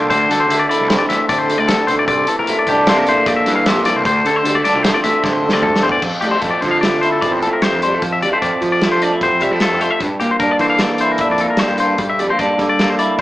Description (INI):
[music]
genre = math rock and midwest emo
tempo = 151 BPM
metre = 5/4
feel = straight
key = unclear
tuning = A4 = 440 Hz
[part]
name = electric guitar through a small old amp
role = accompaniment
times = 0.0-13.2 s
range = D2 to F4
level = -17 LUFS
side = right 1 dB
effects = none
[part]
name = twangy electric guitar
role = arpeggios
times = 0.0-13.2 s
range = G4 to F5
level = -17 LUFS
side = left 2 dB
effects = spring reverb
[part]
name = fuzz picked electric bass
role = bass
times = 0.0-13.2 s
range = A1 to G3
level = -23 LUFS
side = equal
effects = overdrive
[part]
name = loose indie drum kit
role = drums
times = 0.1-13.2 s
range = crash cymbal, hi-hat, kick drum, snare drum, toms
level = -21 LUFS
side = equal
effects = none
[sound]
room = moderate studio reverb, RT60 0.8 s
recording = band playing live in one room, small speaker sound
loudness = -13 LUFS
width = side -16 dB against mid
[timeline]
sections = 0.0-6.0 A section; 6.0-13.2 B section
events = drum fill 5.2-6.0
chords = 0.1 Dsus2; 2.1 C13; 4.0 Dm7; 6.0 Fmaj7; 10.0 Gm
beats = | 0.10 0.49 0.89 1.28 1.68 | 2.07 2.47 2.86 3.26 3.65 | 4.05 4.44 4.84 5.23 5.63 | 6.03 6.42 6.82 7.22 7.62 | 8.01 8.41 8.81 9.21 9.61 | 10.00 10.40 10.80 11.20 11.60 | 12.00 12.39 12.79 13.19